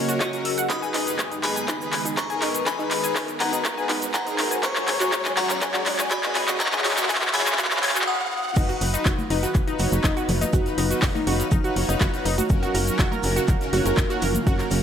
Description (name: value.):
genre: progressive house.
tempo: 122 BPM.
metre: 4/4.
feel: straight.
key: unclear.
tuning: A4 = 440 Hz.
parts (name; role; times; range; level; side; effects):
glassy synth bell; melody; 0.0-8.5 s; F#4 to D#6; -29 LUFS; left 2 dB; chorus, phaser, sidechain pumping, digital delay.
evolving wavetable pad; sustained chords; 0.0-14.8 s; F#2 to C#5; -33 LUFS; right 1 dB; phaser, built-in reverb, sidechain pumping.
soft supersaw; stabs; 0.0-14.8 s; C#4 to C#5; -30 LUFS; left 3 dB; wide subtle chorus, sidechain pumping, digital delay.
riser; sound effects; 0.1-8.6 s; none; -32 LUFS; equal; none.
analog pluck; arpeggios; 0.1-14.6 s; D#4 to E6; -29 LUFS; right 1 dB; chorus, sidechain pumping, digital delay.
deep house drum kit; drums; 0.1-14.8 s; cabasa, crash cymbal, handclaps, hi-hat; -26 LUFS; equal; overdrive, high-pass filter on snare, high-pass filter on hats, high-pass filter on perc, high-pass filter on cymbals, high-pass filter on room.
electronic kick drum; drums; 0.2-14.6 s; none; -24 LUFS; equal; overdrive, high-pass filter on kick, high-pass filter on room.
tight sequencer bass; bass; 8.6-14.8 s; F#1; -25 LUFS; equal; sidechain pumping.
shaker and snare drum; drums; 8.6-14.8 s; none; -38 LUFS; right 1 dB; none.
twinkling granular texture; texture; 9.2-14.8 s; E#4 to E#5; -36 LUFS; right 1 dB; none.
congas; percussion; 9.2-14.4 s; none; -32 LUFS; left 2 dB; sidechain pumping on perc.
room: moderate lush hall reverb, RT60 2.2 s.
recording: high-pass filter.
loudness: -20 LUFS.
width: side -8 dB against mid.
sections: 0.0-8.6 A section; 8.6-14.8 B section.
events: build-up 0.0-8.6; drum fill 0.0-8.1; riser 0.1-8.6; break 8.1-8.6; drop 8.6-14.8.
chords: 0.0 F#; 0.7 G#m/F#; 4.6 C#sus4/F#; 8.6 B/F#; 12.5 F#.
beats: 0.20 | 0.70 1.19 1.68 2.17 | 2.66 3.16 3.65 4.14 | 4.63 5.12 5.62 6.11 | 6.60 7.09 7.58 8.07 | 8.57 9.06 9.55 10.04 | 10.53 11.03 11.52 12.01 | 12.50 12.99 13.48 13.98 | 14.47.